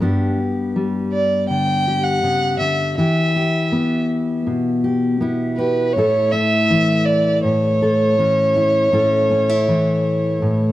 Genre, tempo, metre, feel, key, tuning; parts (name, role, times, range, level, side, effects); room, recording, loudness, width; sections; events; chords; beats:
acoustic folk duo or small band; 81 BPM; 4/4; straight; A4 = 435 Hz
fingerpicked steel-string acoustic guitar; accompaniment; 0.0-10.7 s; G2 to A4; -18 LUFS; left 1 dB
dark fiddle; melody; 1.1-10.7 s; B4 to G5; -18 LUFS; right 1 dB
light reverb, small room reverb; dry, close 1970s-style studio recording; -15 LUFS; side -15 dB against mid
0.0-10.7 A section
0.0 G; 3.0 Em; 6.0 A
| 0.01 0.75 1.49 2.24 | 2.98 3.72 4.47 5.21 | 5.95 6.70 7.44 8.19 | 8.93 9.67 10.42